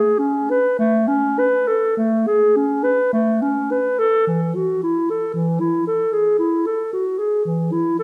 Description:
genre	classical, baroque-style fantasia for unaccompanied clarinet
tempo	49-57 BPM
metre	4/4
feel	rubato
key	A major, E major from 4.3 s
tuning	A4 = 444 Hz
part	dark clarinet	solo	0.0-8.0 s	E3 to B4	-19 LUFS	equal	none
room	wet recital hall reverb, RT60 1.5 s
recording	dark, warm production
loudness	-19 LUFS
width	mono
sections	0.0-4.3 A section; 4.3-8.0 A section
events	none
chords	none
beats	0.79 1.97 3.13 | 4.27 5.34 6.39 7.45

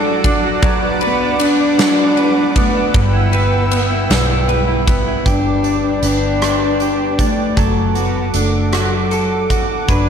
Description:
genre	six-eight pop ballad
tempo	52 BPM (dotted quarters)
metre	6/8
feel	straight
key	D major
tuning	A4 = 440 Hz
part	warm cello	melody	0.0-10.1 s	F#3 to D4	-19 LUFS	left 3 dB	slapback echo
part	direct-recorded clean electric guitar	accompaniment	0.0-10.1 s	G2 to B4	-19 LUFS	right 1 dB	double-tracked left and right, slapback echo
part	warm analog pad	sustained chords	0.0-10.1 s	A4 to E6	-21 LUFS	right 2 dB	chorus
part	vintage muted fingered electric bass	bass	0.0-10.1 s	F#1 to B1	-19 LUFS	equal	none
part	huge arena drum kit	drums	0.2-10.1 s	hi-hat, kick drum, ride cymbal, rim click, snare drum	-19 LUFS	equal	none
room	moderate lush hall reverb, RT60 1.9 s, small room ambience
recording	big arena sound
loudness	-13 LUFS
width	side -7 dB against mid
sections	0.0-5.3 A section; 5.3-10.1 B section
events	none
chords	0.0 D; 0.6 Bm/F#; 2.9 Emadd9/G; 5.3 G; 7.6 D/F#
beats	| 0.62 1.78 | 2.94 4.10 | 5.26 6.42 | 7.58 8.73 | 9.89

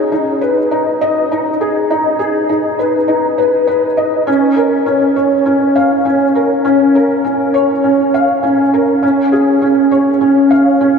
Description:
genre	electronica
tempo	101 BPM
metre	4/4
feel	straight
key	unclear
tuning	A4 = 440 Hz
part	felt-muted upright piano	solo	0.0-11.0 s	Db4 to F5	-10 LUFS	equal	ensemble chorus, diffuse ambient delay
room	wet huge ambient reverb, RT60 8.0 s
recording	dreamy mix soaked in reverb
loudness	-10 LUFS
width	side -6 dB against mid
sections	0.0-11.0 A section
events	none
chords	none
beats	0.12 0.71 1.30 | 1.90 2.49 3.09 3.68 | 4.27 4.87 5.46 6.06 | 6.65 7.24 7.84 8.43 | 9.03 9.62 10.21 10.81

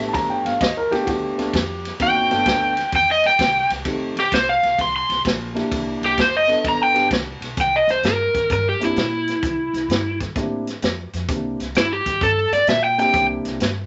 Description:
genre	electric blues shuffle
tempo	129 BPM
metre	4/4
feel	swing 67% on 8ths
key	C mixolydian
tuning	A4 = 441 Hz
part	dark baby grand piano	accompaniment	0.0-13.6 s	A3 to A4	-28 LUFS	equal	none
part	upright bass	bass	0.0-13.9 s	F1 to Bb2	-34 LUFS	equal	none
part	vintage drum kit	drums	0.0-13.8 s	hi-hat, kick drum, ride cymbal, snare drum	-27 LUFS	equal	none
part	dark upright piano	second line	0.1-1.9 s	F#4 to Bb5	-25 LUFS	equal	none
part	overdriven slide guitar	melody	2.0-13.2 s	E4 to C6	-20 LUFS	equal	none
room	moderate studio ambience, RT60 0.5 s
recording	nothing above 7.9 kHz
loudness	-20 LUFS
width	mono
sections	0.0-7.6 A section; 7.6-13.9 B section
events	electric slide guitar solo 7.6-13.9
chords	0.1 G9; 3.9 F9; 5.7 C9; 6.6 G9; 7.6 C9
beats	| 0.14 0.60 1.07 1.53 | 2.00 2.46 2.92 3.39 | 3.85 4.32 4.78 5.25 | 5.71 6.17 6.64 7.10 | 7.57 8.03 8.50 8.96 | 9.43 9.89 10.36 10.82 | 11.28 11.75 12.21 12.68 | 13.14 13.60

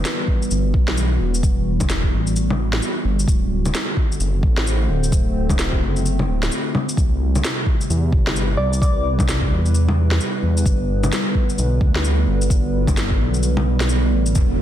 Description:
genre	future garage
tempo	130 BPM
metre	4/4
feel	swing 61% on 16ths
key	unclear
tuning	A4 = 438 Hz
part	warbly tape-like pad	sustained chords	0.0-14.6 s	C3 to C5	-24 LUFS	equal	chorus, built-in reverb, sidechain pumping
part	dark detuned saw bass	bass	0.0-14.6 s	D1 to E2	-20 LUFS	equal	sidechain pumping
part	electronic snare drum, shaker and bongos	drums	0.0-14.5 s	none	-24 LUFS	left 1 dB	none
part	electronic kick drum	drums	0.3-14.5 s	none	-19 LUFS	equal	none
part	soft struck synth lead	melody	8.6-9.1 s	D5	-26 LUFS	left 2 dB	chorus, tape echo
part	impact	sound effects	14.4-14.6 s	none	-23 LUFS	equal	none
room	light reverb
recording	dense, heavily limited modern master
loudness	-17 LUFS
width	side -11 dB against mid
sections	0.0-14.4 A section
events	impact 14.4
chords	0.0 Emadd9; 3.3 D7; 7.0 Cmaj7; 10.7 Gmaj7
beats	0.05 0.51 0.97 | 1.43 1.89 2.36 2.82 | 3.28 3.74 4.20 4.66 | 5.12 5.59 6.05 6.51 | 6.97 7.43 7.89 8.36 | 8.82 9.28 9.74 10.20 | 10.66 11.12 11.59 12.05 | 12.51 12.97 13.43 13.89 | 14.36

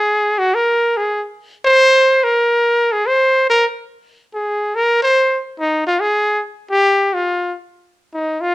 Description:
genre	jazz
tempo	free time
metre	none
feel	none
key	unclear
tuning	A4 = 443 Hz
part	warm trumpet	solo	0.0-8.5 s	Eb4 to C5	-13 LUFS	equal	none
room	light reverb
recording	close, detailed microphones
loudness	-13 LUFS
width	side -17 dB against mid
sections	0.0-6.0 A section; 6.0-8.5 B section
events	trumpet solo 0.0-6.0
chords	none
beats	free time

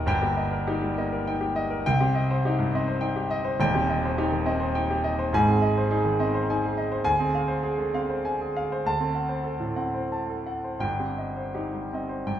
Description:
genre	classical, romantic character piece for solo piano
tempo	80-109 BPM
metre	3/4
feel	rubato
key	unclear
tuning	A4 = 444 Hz
part	warm concert grand piano	solo	0.0-12.4 s	Eb1 to A5	-23 LUFS	equal	none
room	wet recital hall reverb, RT60 1.3 s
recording	recorded in a church or concert hall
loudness	-23 LUFS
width	side -10 dB against mid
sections	0.0-12.4 A section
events	none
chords	0.1 Eb/G; 1.9 Cm; 3.6 Cm/Eb; 5.3 Ab; 7.1 Dm7b5; 8.8 D7; 10.8 Cm/G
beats	| 0.05 0.66 1.26 | 1.86 2.46 3.03 | 3.60 4.17 4.75 | 5.33 5.91 6.48 | 7.06 7.65 8.24 | 8.85 9.46 10.12 | 10.82 11.57 12.29

